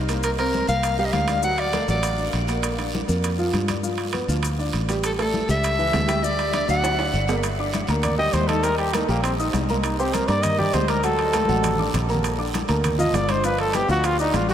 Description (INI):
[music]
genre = latin, salsa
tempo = 200 BPM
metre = 4/4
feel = straight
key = G minor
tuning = A4 = 442 Hz
[part]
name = warm upright piano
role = accompaniment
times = 0.0-14.5 s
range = E3 to Eb6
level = -26 LUFS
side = right 1 dB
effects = none
[part]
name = fingered electric bass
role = bass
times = 0.0-14.5 s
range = G1 to G2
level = -25 LUFS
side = equal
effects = none
[part]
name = congas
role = percussion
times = 0.1-14.5 s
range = none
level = -30 LUFS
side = left 3 dB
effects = none
[part]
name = guiro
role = percussion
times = 0.1-14.5 s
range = none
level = -38 LUFS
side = right 5 dB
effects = none
[part]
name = maracas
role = percussion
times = 0.1-14.5 s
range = none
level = -38 LUFS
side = left 7 dB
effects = none
[part]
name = timbales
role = percussion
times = 0.1-14.5 s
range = none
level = -31 LUFS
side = right 6 dB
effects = none
[part]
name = breathy soprano saxophone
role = melody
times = 0.2-2.3, 5.1-7.2 s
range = A4 to F#5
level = -26 LUFS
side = equal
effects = analog delay
[part]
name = mellow trumpet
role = melody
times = 8.0-14.5 s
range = Bb3 to Eb5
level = -23 LUFS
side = equal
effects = none
[sound]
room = wet huge ambient reverb, RT60 8.0 s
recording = dreamy mix soaked in reverb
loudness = -20 LUFS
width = side -10 dB against mid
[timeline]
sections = 0.0-7.4 A section; 7.4-14.5 B section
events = drum fill 6.8-7.4, 11.3-12.2; trumpet solo 7.4-14.5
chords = 0.2 C5; 1.4 D; 2.6 Bb; 3.8 G7; 5.0 A7; 6.2 Dsus4; 6.8 D; 7.4 Gm; 8.6 Eb; 9.8 C5; 11.0 D; 12.2 Bb; 13.4 G7